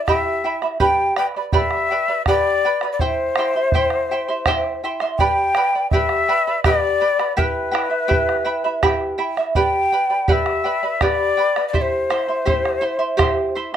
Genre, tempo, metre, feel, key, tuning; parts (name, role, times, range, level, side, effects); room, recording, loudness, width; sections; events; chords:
andean folk, Andean ensemble; 82 BPM; 3/4; straight; A4 = 440 Hz
breathy quena; melody; 0.0-13.6 s; B4 to G5; -19 LUFS; left 3 dB
charango; accompaniment; 0.0-13.8 s; E4 to C6; -21 LUFS; right 2 dB
bombo; percussion; 0.1-13.8 s; -23 LUFS; right 3 dB
moderate studio reverb, RT60 0.5 s; minimal, uncompressed stereo recording; -17 LUFS; side -9 dB against mid
0.8-13.8 A section
0.0 Em; 0.8 G; 3.0 C; 5.2 G; 7.4 Em; 9.6 G; 11.7 C